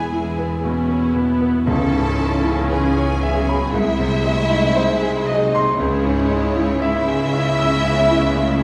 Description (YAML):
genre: classical, romantic movement for piano and orchestra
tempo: 58 BPM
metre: 4/4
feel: rubato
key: unclear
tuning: A4 = 440 Hz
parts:
  - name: clear grand piano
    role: melody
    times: 0.0-8.6 s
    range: B#1 to E6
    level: -22 LUFS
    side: equal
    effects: none
  - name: warm studio violin section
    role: melody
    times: 0.0-8.6 s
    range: C#5 to A5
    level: -27 LUFS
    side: equal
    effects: none
  - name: warm symphonic violin section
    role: second line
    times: 0.0-8.6 s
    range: C#4 to A4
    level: -30 LUFS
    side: equal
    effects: none
  - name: warm studio viola section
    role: accompaniment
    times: 0.0-8.6 s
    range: F#3 to G#4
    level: -29 LUFS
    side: equal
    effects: none
  - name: warm French horn section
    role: sustained chords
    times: 0.0-8.6 s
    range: E3 to C#4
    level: -29 LUFS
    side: equal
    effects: none
  - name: rich studio double bass section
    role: bass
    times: 0.0-8.6 s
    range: E1 to C#2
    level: -28 LUFS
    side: equal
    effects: none
  - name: rich symphonic cello section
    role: bass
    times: 0.0-8.6 s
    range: E2 to C#3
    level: -28 LUFS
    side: equal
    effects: none
  - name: timpani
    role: percussion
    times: 1.7-3.2 s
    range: C#3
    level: -30 LUFS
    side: equal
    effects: none
room: wet recital hall reverb, RT60 1.5 s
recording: heard from further back in the room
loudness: -18 LUFS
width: mono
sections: 0.0-8.6 A section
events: none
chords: 0.0 E; 1.7 C#m7; 3.7 G#/B#; 5.8 C#m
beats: 0.64 | 1.67 2.70 3.73 4.76 | 5.78 6.81 7.83